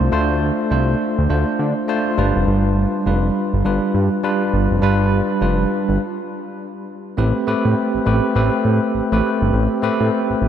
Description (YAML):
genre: R&B, new jack swing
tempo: 102 BPM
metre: 4/4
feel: swing 61% on 16ths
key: A minor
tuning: A4 = 440 Hz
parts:
  - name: bell-like tine electric piano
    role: accompaniment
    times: 0.0-10.5 s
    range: G3 to C5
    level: -18 LUFS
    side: equal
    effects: medium stereo tremolo
  - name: fat analog bass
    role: bass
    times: 0.0-10.5 s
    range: F1 to D3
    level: -18 LUFS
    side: equal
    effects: none
room: wet cathedral reverb, RT60 5.3 s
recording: dreamy mix soaked in reverb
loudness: -16 LUFS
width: side -9 dB against mid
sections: 0.0-7.2 A section; 7.2-10.5 B section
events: stop 6.0-7.2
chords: 0.0 Dm7; 2.2 G7; 7.2 Am9